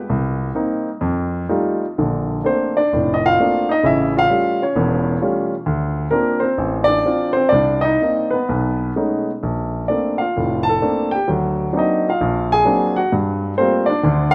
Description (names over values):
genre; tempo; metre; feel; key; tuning
solo jazz; 130 BPM; 4/4; swing 67% on 8ths, rubato; Bb major; A4 = 442 Hz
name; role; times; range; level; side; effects
warm grand piano; solo; 0.1-14.3 s; E1 to A5; -18 LUFS; equal; none
room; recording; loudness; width
moderate plate reverb, RT60 2.7 s; rough home demo mix; -19 LUFS; mono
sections
0.0-2.0 A section; 2.0-14.3 B section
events
grand piano solo 0.0-2.0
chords
0.1 Cm7; 1.0 F9; 2.0 Bbmaj9; 3.8 A7b13; 5.7 Dm7; 7.5 Cm7; 8.5 B13; 9.4 Bbmaj9; 11.3 D7alt; 13.1 Gm9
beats
| 0.07 0.54 1.01 1.50 | 1.99 2.46 2.93 3.39 | 3.84 4.30 4.76 5.21 | 5.67 6.13 6.59 7.06 | 7.53 8.00 8.48 8.95 | 9.43 9.90 10.38 10.84 | 11.30 11.77 12.22 12.68 | 13.13 13.59 14.04